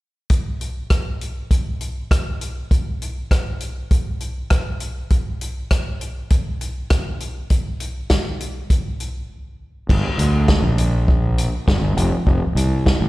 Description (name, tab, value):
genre	indie rock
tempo	100 BPM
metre	4/4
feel	straight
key	G minor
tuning	A4 = 440 Hz
part	vintage drum kit	drums	0.3-13.0 s	crash cymbal, hi-hat, kick drum, rim click, snare drum	-19 LUFS	equal	none
part	fuzz fingered electric bass	bass	9.9-13.1 s	F1 to D2	-18 LUFS	equal	overdrive
room	little or no reverb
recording	live gig heard through the venue's PA, recital hall reverb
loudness	-18 LUFS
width	side -19 dB against mid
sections	0.3-9.9 A section; 9.9-13.1 B section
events	break 9.3-9.9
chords	none